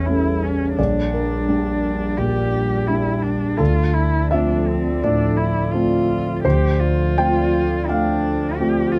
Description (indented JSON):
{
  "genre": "neoclassical piano and strings",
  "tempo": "85 BPM",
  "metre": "4/4",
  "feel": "rubato",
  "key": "D minor",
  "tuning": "A4 = 440 Hz",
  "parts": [
    { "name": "muted cello", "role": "second line", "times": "0.0-9.0 s", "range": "C4 to G4", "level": "-26 LUFS", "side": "equal", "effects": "none" },
    { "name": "dark concert grand piano", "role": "accompaniment", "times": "0.0-9.0 s", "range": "Bb1 to G5", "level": "-21 LUFS", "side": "equal", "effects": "none" },
    { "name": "dark analog pad", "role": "sustained chords", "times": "0.0-9.0 s", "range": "F3 to D5", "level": "-30 LUFS", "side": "equal", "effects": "chorus, phaser" }
  ],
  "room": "light reverb",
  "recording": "none",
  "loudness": "-19 LUFS",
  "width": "mono",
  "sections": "0.0-9.0 A section",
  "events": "none",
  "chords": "0.0 A7; 0.8 Gm/Bb; 3.6 Dm7"
}